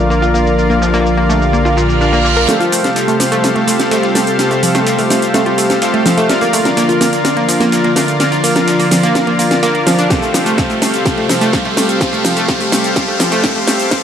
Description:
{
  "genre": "progressive house",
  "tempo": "126 BPM",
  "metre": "4/4",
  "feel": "straight",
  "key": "unclear",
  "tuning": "A4 = 440 Hz",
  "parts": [
    { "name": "lush unison pad", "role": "sustained chords", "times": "0.0-14.0 s", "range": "C3 to G4", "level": "-19 LUFS", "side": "equal", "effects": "chorus, sidechain pumping" },
    { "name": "soft supersaw", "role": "stabs", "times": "0.0-14.0 s", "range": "F4 to F5", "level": "-15 LUFS", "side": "left 1 dB", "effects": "sidechain pumping, digital delay" },
    { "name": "round analog bass", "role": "bass", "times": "0.0-2.5 s", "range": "Bb1", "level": "-17 LUFS", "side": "equal", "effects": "sidechain pumping" },
    { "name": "analog pluck", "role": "arpeggios", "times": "0.1-13.7 s", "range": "Bb2 to Bb4", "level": "-17 LUFS", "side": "right 1 dB", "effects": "chorus, cassette tape, sidechain pumping, digital delay" },
    { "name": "dusty soul sampler-style drum kit", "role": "drums", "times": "0.1-14.0 s", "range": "hi-hat, snare drum", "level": "-27 LUFS", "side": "equal", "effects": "none" },
    { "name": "house drum kit", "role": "drums", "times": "0.1-14.0 s", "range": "cabasa, hi-hat, snare drum", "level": "-18 LUFS", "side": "equal", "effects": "low-pass filter on perc, low-pass filter on snare, low-pass filter on hats" },
    { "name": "reverse cymbal and riser", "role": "sound effects", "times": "1.7-14.0 s", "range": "none", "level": "-23 LUFS", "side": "right 2 dB", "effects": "none" },
    { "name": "electronic kick drum", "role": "drums", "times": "10.1-14.0 s", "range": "none", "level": "-20 LUFS", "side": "equal", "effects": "none" }
  ],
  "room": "moderate digital room reverb, RT60 1.1 s",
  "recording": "high-pass filter",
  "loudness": "-11 LUFS",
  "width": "side -8 dB against mid",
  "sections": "0.0-2.5 A section; 2.5-14.0 B section",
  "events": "reverse cymbal 1.7-2.5; build-up 2.5-14.0; drum fill 2.5-14.0; riser 2.5-14.0",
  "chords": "0.0 Bb; 2.5 Fadd9; 6.3 Bb; 10.1 Fadd9",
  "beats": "0.10 | 0.58 1.06 1.53 2.01 | 2.48 2.96 3.44 3.91 | 4.39 4.87 5.34 5.82 | 6.29 6.77 7.25 7.72 | 8.20 8.68 9.15 9.63 | 10.10 10.58 11.06 11.53 | 12.01 12.48 12.96 13.44 | 13.91"
}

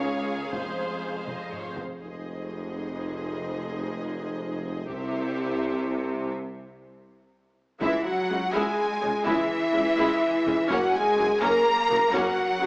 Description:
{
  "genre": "cinematic, epic orchestral film score",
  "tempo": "83 BPM (dotted quarters)",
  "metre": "6/8",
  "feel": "straight",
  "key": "F minor",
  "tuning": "A4 = 441 Hz",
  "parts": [
    { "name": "rich symphonic violin section", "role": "melody", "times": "0.0-12.7 s", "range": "Eb5 to A#5", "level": "-33 LUFS", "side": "equal", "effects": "none" },
    { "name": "warm symphonic violin section", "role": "second line", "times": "0.0-12.7 s", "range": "Ab4 to A#5", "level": "-32 LUFS", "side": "equal", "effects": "none" },
    { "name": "rich symphonic viola section", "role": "accompaniment", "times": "0.0-12.7 s", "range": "C#3 to Db5", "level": "-32 LUFS", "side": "equal", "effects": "none" },
    { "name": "dark French horn section", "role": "sustained chords", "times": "0.0-12.7 s", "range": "G3 to A#4", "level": "-28 LUFS", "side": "equal", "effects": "none" },
    { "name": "rich symphonic cello section", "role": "bass", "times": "0.0-12.7 s", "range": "Db2 to A#3", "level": "-32 LUFS", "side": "equal", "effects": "none" },
    { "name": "rich symphonic double bass section", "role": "bass", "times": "0.0-12.7 s", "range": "F1 to F#2", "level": "-40 LUFS", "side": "equal", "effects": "none" },
    { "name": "taiko ensemble", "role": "drums", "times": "0.5-12.6 s", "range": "none", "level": "-39 LUFS", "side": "equal", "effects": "none" },
    { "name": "warm tuba", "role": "bass", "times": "2.0-12.7 s", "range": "F1 to C#2", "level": "-34 LUFS", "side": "equal", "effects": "none" }
  ],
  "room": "moderate concert hall reverb, RT60 2.3 s",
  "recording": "small speaker sound",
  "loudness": "-24 LUFS",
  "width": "side -27 dB against mid",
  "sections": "0.0-2.0 A section; 2.0-7.8 B section; 7.8-12.7 C section",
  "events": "drum fill 1.3-2.0, 7.1-7.8; break 6.3-7.8",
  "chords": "0.0 Db; 0.5 Fm; 2.0 Fm7; 4.9 C; 6.3 N.C.; 7.8 C#m; 10.7 F#",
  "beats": "| 0.54 1.28 | 2.02 2.74 | 3.46 4.18 | 4.90 5.62 | 6.35 7.08 | 7.82 8.54 | 9.27 9.99 | 10.71 11.43 | 12.15"
}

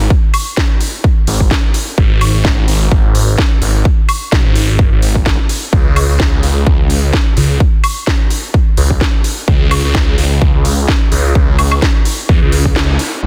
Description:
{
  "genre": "bass house",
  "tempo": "128 BPM",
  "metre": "4/4",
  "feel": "swing 56% on 16ths",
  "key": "unclear",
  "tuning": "A4 = 444 Hz",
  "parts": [
    { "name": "phased detuned saw bass", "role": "bass", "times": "0.0-13.3 s", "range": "G#1 to E2", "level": "-15 LUFS", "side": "equal", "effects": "phaser, tube saturation, sidechain pumping" },
    { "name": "electronic kick drum", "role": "drums", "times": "0.1-12.7 s", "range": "none", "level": "-14 LUFS", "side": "equal", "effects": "overdrive" },
    { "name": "garage drum kit", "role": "drums", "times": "0.3-13.1 s", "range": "hi-hat, snare drum, woodblock", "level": "-21 LUFS", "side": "equal", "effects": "low-pass filter on hats, low-pass filter on perc, low-pass filter on snare, low-pass filter on room" }
  ],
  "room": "little or no reverb",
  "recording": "dense, heavily limited modern master",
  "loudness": "-12 LUFS",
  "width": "mono",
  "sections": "0.0-13.2 A section",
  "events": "break 12.8-13.2; band accent 12.8",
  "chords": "none",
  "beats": "| 0.10 0.57 1.04 1.51 | 1.98 2.45 2.92 3.38 | 3.85 4.32 4.79 5.26 | 5.73 6.20 6.67 7.13 | 7.60 8.07 8.54 9.01 | 9.48 9.95 10.41 10.88 | 11.35 11.82 12.29 12.76 | 13.23"
}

